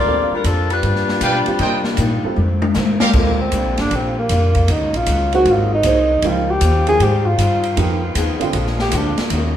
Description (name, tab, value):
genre	jazz, big band swing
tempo	156 BPM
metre	4/4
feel	swing 66% on 8ths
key	Bb major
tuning	A4 = 440 Hz
part	clear saxophone section	melody	0.0-2.7 s	F3 to D5	-20 LUFS	left 3 dB	none
part	upright bass	bass	0.0-9.6 s	G1 to C3	-19 LUFS	equal	none
part	picked steel-string acoustic guitar	accompaniment	0.1-9.6 s	F2 to Ab4	-28 LUFS	left 4 dB	none
part	warm upright piano	accompaniment	0.1-8.5 s	D3 to C5	-24 LUFS	right 6 dB	none
part	swinging big-band drum kit	drums	0.4-9.4 s	crash cymbal, hi-hat, kick drum, ride cymbal, snare drum, toms	-22 LUFS	equal	none
part	brilliant trumpet section	stabs	1.2-3.1 s	G4 to G5	-21 LUFS	right 3 dB	none
part	breathy tenor saxophone	melody	3.2-9.2 s	Bb3 to Ab4	-18 LUFS	equal	none
part	dark saxophone section	sustained chords	3.2-9.6 s	C3 to F4	-29 LUFS	left 1 dB	none
room	wet large studio reverb, RT60 1.2 s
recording	band playing live in one room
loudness	-14 LUFS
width	side -10 dB against mid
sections	0.0-3.1 A section; 3.1-9.6 B section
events	drum fill 2.4-3.1; tenor saxophone solo 3.1-9.6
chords	0.1 Bb6; 0.8 G7; 1.6 Cm7; 2.4 F7; 3.1 Bb6; 4.7 Ebm7; 5.5 Ab7; 6.2 Dbmaj9#11; 7.8 Fm7b5; 8.5 Bb7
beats	| 0.06 0.45 0.83 1.22 | 1.60 1.99 2.37 2.76 | 3.14 3.53 3.92 4.30 | 4.68 5.07 5.46 5.84 | 6.23 6.61 7.00 7.38 | 7.77 8.15 8.54 8.93 | 9.31